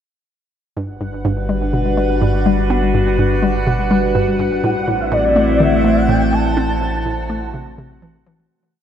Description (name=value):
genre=ambient, sequencer-driven space music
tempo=124 BPM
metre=4/4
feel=straight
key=G major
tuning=A4 = 441 Hz
part: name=evolving wavetable pad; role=sustained chords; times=1.2-8.5 s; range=G3 to C5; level=-19 LUFS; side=left 1 dB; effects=phaser, built-in reverb
part: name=hollow square pluck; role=riff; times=0.8-8.4 s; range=G2 to C4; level=-20 LUFS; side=left 1 dB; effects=chorus, analog delay
part: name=warm sub bass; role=bass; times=0.8-8.5 s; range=G1 to A1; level=-22 LUFS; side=equal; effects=none
part: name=bubbling stepped-filter texture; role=texture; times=1.1-8.5 s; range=F#5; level=-28 LUFS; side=right 4 dB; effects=chorus, built-in reverb
part: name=expressive synth lead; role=melody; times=4.6-8.0 s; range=D5 to A5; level=-19 LUFS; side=equal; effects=ensemble chorus, analog delay
room=wet cathedral reverb, RT60 5.3 s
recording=in a vast, echoing space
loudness=-14 LUFS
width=side -9 dB against mid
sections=0.8-8.5 A section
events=fade-out 5.9-8.5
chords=0.8 Gmaj7; 4.6 Am